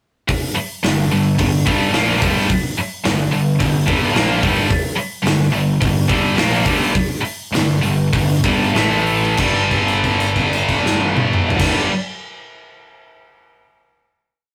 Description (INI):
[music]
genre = hard rock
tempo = 92-109 BPM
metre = 4/4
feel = straight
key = G minor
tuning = A4 = 438 Hz
[part]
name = scooped high-gain guitar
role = riff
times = 0.3-11.9 s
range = G2 to Bb3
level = -19 LUFS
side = equal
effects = distortion
[part]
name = fuzz picked electric bass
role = bass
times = 0.3-11.9 s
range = G1 to Bb1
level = -25 LUFS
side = equal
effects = overdrive
[part]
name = gated 80s drum kit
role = drums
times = 0.3-11.8 s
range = crash cymbal, hi-hat, kick drum, snare drum, toms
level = -23 LUFS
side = equal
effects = none
[sound]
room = moderate studio reverb, RT60 0.5 s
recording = rough rehearsal-room recording, warm saturation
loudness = -17 LUFS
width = mono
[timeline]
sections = 0.3-9.4 riff; 9.4-12.0 final chord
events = slowing down 4.7-9.4; held note 9.4-11.6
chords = 0.3 Gm; 8.7 A5; 9.4 G5